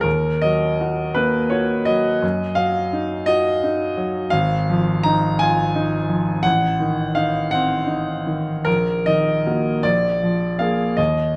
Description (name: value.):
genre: classical, romantic character piece for solo piano.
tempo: 48-57 BPM (dotted quarters).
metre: 6/8.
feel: rubato.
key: Eb minor.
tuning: A4 = 440 Hz.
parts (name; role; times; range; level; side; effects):
clear grand piano; solo; 0.0-11.4 s; Ab1 to Bb5; -20 LUFS; equal; none.
room: moderate recital hall reverb, RT60 1.4 s.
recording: none.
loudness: -20 LUFS.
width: mono.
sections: 0.0-11.4 A section.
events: none.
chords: 0.1 Ebm; 2.2 Ebm/Gb; 4.3 Fm7/Ab; 6.5 Adim7; 8.7 Ebm/Bb; 9.8 Bb7.